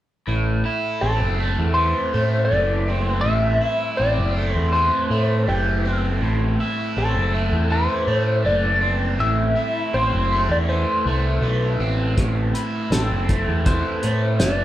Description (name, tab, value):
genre	psychedelic rock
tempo	81 BPM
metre	4/4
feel	straight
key	A dorian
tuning	A4 = 439 Hz
part	overdriven electric guitar	riff	0.3-14.6 s	A2 to E4	-24 LUFS	right 1 dB	phaser
part	growling picked electric bass	bass	0.3-14.6 s	F#1 to A2	-22 LUFS	equal	overdrive
part	lightly driven lead guitar	melody	1.0-14.6 s	G4 to E5	-23 LUFS	equal	wah
part	cloth-damped thuddy drum kit	drums	12.2-14.6 s	hi-hat, kick drum, snare drum	-22 LUFS	equal	none
room	moderate large studio reverb, RT60 0.8 s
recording	band playing live in one room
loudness	-18 LUFS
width	side -13 dB against mid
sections	0.3-14.6 A section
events	none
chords	0.3 Am